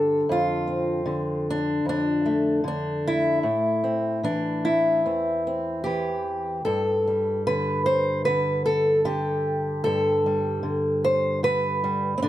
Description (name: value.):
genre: folk, solo fingerstyle acoustic guitar.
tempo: 75 BPM.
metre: 4/4.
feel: straight.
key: unclear.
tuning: A4 = 441 Hz.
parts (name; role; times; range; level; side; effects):
fingerpicked old ladder-braced acoustic guitar; solo; 0.0-12.3 s; E2 to C5; -22 LUFS; equal; none.
room: light reverb.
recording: none.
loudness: -22 LUFS.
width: side -13 dB against mid.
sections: 0.0-12.3 A section.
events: none.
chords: 0.3 Dm7/F; 3.4 Am7; 6.7 Gsus2.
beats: | 0.28 1.07 1.86 2.65 | 3.44 4.24 5.04 5.84 | 6.65 7.45 8.25 9.05 | 9.85 10.65 11.44 12.22.